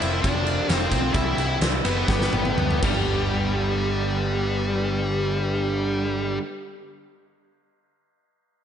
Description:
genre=classic rock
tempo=117-136 BPM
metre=4/4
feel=straight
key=G mixolydian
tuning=A4 = 440 Hz
part: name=octave-fuzz lead guitar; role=melody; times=0.0-6.4 s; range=G3 to E4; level=-26 LUFS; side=left 1 dB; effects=distortion
part: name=raw garage guitar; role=riff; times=0.0-6.4 s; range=F2 to G4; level=-27 LUFS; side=equal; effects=overdrive, slapback echo
part: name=picked electric bass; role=bass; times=0.0-6.4 s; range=F1 to D2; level=-27 LUFS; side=equal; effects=none
part: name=huge arena drum kit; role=drums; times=0.0-2.9 s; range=crash cymbal, kick drum, ride cymbal, snare drum, toms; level=-25 LUFS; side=equal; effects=none
room=moderate lush hall reverb, RT60 1.7 s, small room ambience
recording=big arena sound, nothing above 10.3 kHz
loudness=-21 LUFS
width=side -9 dB against mid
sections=0.0-3.1 A section; 3.1-7.2 B section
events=slowing down 0.0-3.1; drum fill 2.1-3.1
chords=0.0 F; 1.1 C; 2.1 G

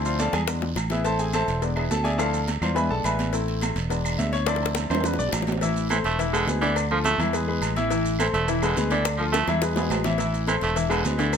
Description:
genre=latin, salsa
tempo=210 BPM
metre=4/4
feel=straight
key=unclear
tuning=A4 = 440 Hz
part: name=clear concert grand piano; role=accompaniment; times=0.0-11.4 s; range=D3 to B5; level=-26 LUFS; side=left 3 dB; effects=none
part: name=fingered electric bass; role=bass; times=0.0-11.4 s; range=E1 to E2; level=-27 LUFS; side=right 1 dB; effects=none
part: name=agogo bells and timbales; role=percussion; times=0.1-11.4 s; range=none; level=-33 LUFS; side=right 7 dB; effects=none
part: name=congas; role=percussion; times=0.1-11.4 s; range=none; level=-34 LUFS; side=right 1 dB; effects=none
part: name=maracas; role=percussion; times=0.1-11.4 s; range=none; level=-39 LUFS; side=right 3 dB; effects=none
part: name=cowbell and bongos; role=percussion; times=0.2-11.4 s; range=none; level=-32 LUFS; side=left 8 dB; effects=none
part: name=guiro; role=percussion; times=0.2-11.4 s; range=none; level=-38 LUFS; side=right 6 dB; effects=none
part: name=claves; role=percussion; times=0.3-11.4 s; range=none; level=-39 LUFS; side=left 3 dB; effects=none
part: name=raspy baritone saxophone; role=second line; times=5.9-11.3 s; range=D3 to A3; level=-26 LUFS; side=right 4 dB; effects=none
room=light reverb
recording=close, detailed microphones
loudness=-22 LUFS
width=side -7 dB against mid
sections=0.0-5.6 A section; 5.6-11.4 B section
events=grand piano solo 0.0-5.6; drum fill 0.3-1.1, 4.5-5.6, 9.1-10.2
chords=0.5 E7; 1.1 Am; 1.6 E7; 2.2 Dm7; 2.8 E7; 3.3 Am; 3.9 E7; 4.5 Dm7; 5.1 E7; 5.6 Am; 6.2 E7; 6.8 Dm; 7.3 E; 7.9 Am; 8.5 E7; 9.1 Dm; 9.6 E; 10.2 Am; 10.8 E7

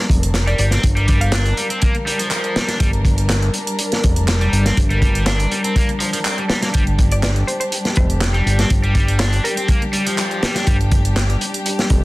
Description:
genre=breakbeat, breaks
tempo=122 BPM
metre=4/4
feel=swing 53% on 16ths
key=G minor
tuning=A4 = 440 Hz
part: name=dark studio string section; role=sustained chords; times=0.0-12.0 s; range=G3 to Bb4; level=-24 LUFS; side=left 1 dB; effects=sidechain pumping
part: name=fat analog bass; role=bass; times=0.1-12.0 s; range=F1 to G1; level=-17 LUFS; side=equal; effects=none
part: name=crunchy breakbeat drum kit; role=drums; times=0.1-12.0 s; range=hi-hat, kick drum, snare drum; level=-18 LUFS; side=equal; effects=none
part: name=house drum kit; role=drums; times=0.2-11.9 s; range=handclaps, hi-hat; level=-26 LUFS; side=right 1 dB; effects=soft clipping on snare
part: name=mallet-like synth pluck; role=melody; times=0.5-1.7, 7.1-10.1 s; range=Bb4 to F5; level=-28 LUFS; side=equal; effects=chorus, telephone sound, cassette tape, tape echo
part: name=cranked stack guitar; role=riff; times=0.5-10.8 s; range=F3 to D4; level=-24 LUFS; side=equal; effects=overdrive, tape echo
room=light reverb, small room ambience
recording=dense, heavily limited modern master, vinyl crackle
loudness=-15 LUFS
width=side -20 dB against mid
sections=0.0-12.0 A section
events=none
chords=0.0 Gm

